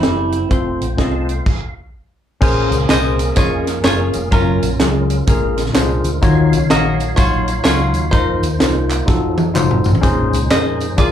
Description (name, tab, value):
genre	uptempo gospel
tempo	126 BPM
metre	4/4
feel	swing 62% on 8ths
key	Bb minor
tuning	A4 = 436 Hz
part	twelve-string electric guitar	second line	0.0-0.5 s	E4	-22 LUFS	right 7 dB	slapback echo
part	tine electric piano	accompaniment	0.0-11.1 s	Bb2 to C6	-19 LUFS	left 3 dB	medium stereo tremolo, slapback echo
part	percussive tonewheel organ	sustained chords	0.0-11.1 s	D3 to A5	-26 LUFS	right 3 dB	slow rotary speaker, chorus vibrato
part	fingered electric bass	bass	0.0-11.1 s	F1 to F2	-19 LUFS	equal	none
part	tight funk drum kit	drums	0.0-11.1 s	crash cymbal, hi-hat, kick drum, snare drum, toms	-17 LUFS	equal	none
part	tambourine and handclaps	percussion	2.4-11.1 s	none	-29 LUFS	right 2 dB	none
part	bluegrass banjo	melody	2.9-11.1 s	Db4 to Eb5	-20 LUFS	right 1 dB	slapback echo
room	light reverb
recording	live gig heard through the venue's PA, club reverb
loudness	-13 LUFS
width	side -10 dB against mid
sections	0.0-2.4 A section; 2.4-11.1 B section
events	stop 1.5-2.4; drum fill 9.1-10.0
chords	0.0 C; 0.5 F; 2.4 Bbm9; 4.3 Gbmaj7; 5.3 Bb7; 6.2 Ebm9; 8.1 F7sus4; 9.1 F7b9; 10.0 Bbm11